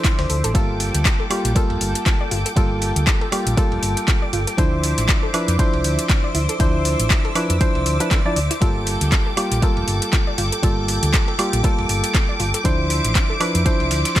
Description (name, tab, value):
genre	deep house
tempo	119 BPM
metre	4/4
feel	swing 57% on 16ths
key	G minor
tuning	A4 = 438 Hz
part	warm analog pad	sustained chords	0.0-14.2 s	A4 to E6	-31 LUFS	equal	chorus, sidechain pumping
part	soft round pluck	arpeggios	0.0-14.2 s	E4 to E5	-32 LUFS	left 1 dB	chorus, sidechain pumping, dub echo
part	percussive organ stab	stabs	0.0-14.2 s	F3 to D5	-24 LUFS	equal	chorus, sidechain pumping, dub echo
part	deep house drum kit	drums	0.0-14.2 s	handclaps, hi-hat, woodblock	-24 LUFS	equal	overdrive
part	dusty soul sampler-style drum kit	drums	0.0-14.2 s	ride cymbal, snare drum	-35 LUFS	right 4 dB	none
part	electronic kick drum	drums	0.0-14.2 s	none	-19 LUFS	equal	overdrive
part	hollow-body short-scale fingered electric bass	bass	0.2-14.0 s	F1 to F2	-22 LUFS	equal	sidechain pumping
part	string machine, violins	texture	0.5-14.2 s	D6	-29 LUFS	equal	ensemble chorus, sidechain pumping
room	little or no reverb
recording	none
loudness	-16 LUFS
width	side -13 dB against mid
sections	0.0-14.2 A section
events	none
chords	0.0 Dm9; 0.5 Gm9; 4.6 Dm9; 8.6 Gm9; 12.7 Dm9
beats	0.04 | 0.55 1.05 1.56 2.06 | 2.57 3.07 3.57 4.08 | 4.58 5.09 5.59 6.09 | 6.60 7.10 7.61 8.11 | 8.62 9.12 9.62 10.13 | 10.63 11.14 11.64 12.14 | 12.65 13.15 13.66 14.16